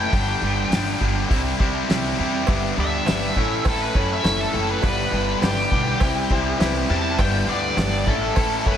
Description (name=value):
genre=classic rock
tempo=102 BPM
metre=4/4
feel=straight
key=unclear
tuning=A4 = 440 Hz
part: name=octave-fuzz lead guitar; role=melody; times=0.0-8.8 s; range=G4 to A5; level=-26 LUFS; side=left 1 dB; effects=wah, distortion
part: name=distorted electric guitar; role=riff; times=0.0-8.8 s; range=G2 to E4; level=-25 LUFS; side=left 9 dB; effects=overdrive
part: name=raw garage guitar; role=riff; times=0.0-8.8 s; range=G2 to A4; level=-26 LUFS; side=right 10 dB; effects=overdrive
part: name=upright bass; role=bass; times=0.0-8.8 s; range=F#1 to F#2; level=-27 LUFS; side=equal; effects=none
part: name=cloth-damped thuddy drum kit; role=drums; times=0.1-8.8 s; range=hi-hat, kick drum, snare drum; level=-24 LUFS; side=equal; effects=none
part: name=bright reed electric piano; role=accompaniment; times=2.5-8.8 s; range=E4 to E5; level=-31 LUFS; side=left 6 dB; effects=slapback echo
part: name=cowbell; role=percussion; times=2.5-8.5 s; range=none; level=-35 LUFS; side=right 6 dB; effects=none
room=moderate scoring stage reverb, RT60 2.1 s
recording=big arena sound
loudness=-19 LUFS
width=side -9 dB against mid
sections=0.0-8.8 A section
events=lead electric guitar solo 0.0-8.8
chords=0.1 G; 1.3 C; 2.5 G6; 3.4 A; 4.8 G6; 6.0 C; 7.2 G6; 8.1 A